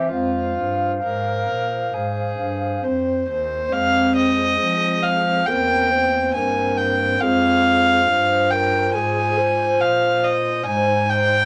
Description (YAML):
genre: classical, baroque-style sonata movement with continuo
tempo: 69 BPM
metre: 4/4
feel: straight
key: F minor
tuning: A4 = 441 Hz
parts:
  - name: mellow hollow baroque flute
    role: melody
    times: 0.0-11.5 s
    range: Ab4 to F5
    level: -27 LUFS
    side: equal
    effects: none
  - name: warm violin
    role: second line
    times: 0.0-11.5 s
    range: F4 to Ab5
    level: -22 LUFS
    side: equal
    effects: none
  - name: pipe organ, stopped flute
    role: accompaniment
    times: 0.0-11.5 s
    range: Eb2 to C5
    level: -27 LUFS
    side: equal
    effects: none
  - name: dark cello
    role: bass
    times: 0.0-11.5 s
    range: Eb2 to F3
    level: -28 LUFS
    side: equal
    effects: none
room: wet studio reverb, RT60 0.5 s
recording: none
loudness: -19 LUFS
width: mono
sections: 0.0-3.7 A section; 3.7-11.5 B section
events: none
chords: 0.1 Fm; 5.5 C7/E; 7.2 Fm; 10.7 Ab